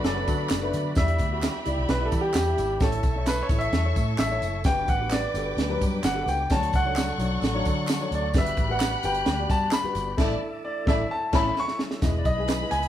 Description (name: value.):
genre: uptempo 1960s-style soul.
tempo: 130 BPM.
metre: 4/4.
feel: straight.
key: unclear.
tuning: A4 = 440 Hz.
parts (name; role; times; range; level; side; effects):
warm studio violin section; second line; 0.0-12.9 s; E4 to F#6; -33 LUFS; right 1 dB; none.
dark upright piano; accompaniment; 0.0-12.9 s; F#3 to E5; -32 LUFS; left 3 dB; none.
tonewheel organ; sustained chords; 0.0-12.9 s; D3 to C#5; -39 LUFS; right 1 dB; fast rotary speaker.
archtop guitar, miked and amplified; riff; 0.0-0.9, 11.3-11.5 s; F#3 to A4; -34 LUFS; left 6 dB; none.
vintage muted fingered electric bass; bass; 0.0-12.9 s; E1 to E3; -29 LUFS; equal; none.
compact cocktail drum kit; drums; 0.0-12.9 s; crash cymbal, hi-hat, kick drum, snare drum; -26 LUFS; equal; none.
tambourine and handclaps; percussion; 0.0-12.8 s; none; -39 LUFS; right 3 dB; none.
clear baby grand piano; melody; 0.1-12.9 s; G4 to C#6; -28 LUFS; equal; none.
room: moderate large studio reverb, RT60 0.9 s.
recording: band playing live in one room.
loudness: -22 LUFS.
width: side -11 dB against mid.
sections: 0.0-12.0 A section.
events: grand piano solo 0.0-12.0; band accent 10.2-12.0; drum fill 11.6-12.0.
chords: 0.0 Bm7; 1.0 Em7; 2.8 A; 4.7 Gmaj7; 6.5 Dmaj7; 8.3 Gmaj7; 10.2 Asus4; 11.1 A; 12.0 Emaj7.